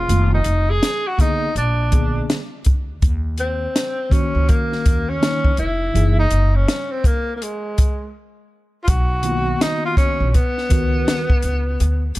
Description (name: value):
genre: hip hop, jazz-hop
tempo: 82 BPM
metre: 4/4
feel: swing 63% on 16ths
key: unclear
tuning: A4 = 441 Hz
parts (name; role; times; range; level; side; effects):
- breathy tenor saxophone; melody; 0.0-12.2 s; Ab3 to Ab4; -22 LUFS; equal; none
- mellow tine electric piano; accompaniment; 0.0-11.3 s; D3 to A#4; -25 LUFS; equal; medium stereo tremolo
- upright bass; bass; 0.0-12.2 s; F1 to Eb2; -19 LUFS; equal; none
- compact cocktail drum kit; drums; 0.1-12.2 s; hi-hat, kick drum, snare drum; -18 LUFS; equal; none
room: little or no reverb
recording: dark, warm production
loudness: -16 LUFS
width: side -18 dB against mid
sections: 0.0-12.2 A section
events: tenor saxophone solo 0.0-12.2; break 8.2-8.9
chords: 0.1 Fm7b5; 1.6 Bb7b9; 3.0 Ebm7; 6.0 Gb13; 8.9 Bmaj7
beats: | 0.10 0.83 1.56 2.30 | 3.03 3.76 4.49 5.22 | 5.96 6.69 7.42 8.15 | 8.88 9.61 10.35 11.08 | 11.81